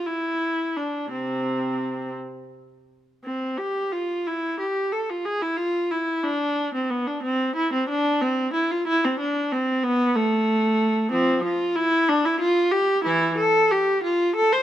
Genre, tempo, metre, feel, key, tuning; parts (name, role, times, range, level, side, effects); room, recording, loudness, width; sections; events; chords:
classical, baroque-style suite movement for unaccompanied viola; 55-63 BPM (dotted quarters); 6/8; rubato; C major; A4 = 440 Hz
warm viola; solo; 0.0-14.6 s; C3 to C5; -21 LUFS; equal
light reverb; close, detailed microphones; -21 LUFS; side -12 dB against mid
0.0-3.2 A section; 3.2-14.6 A section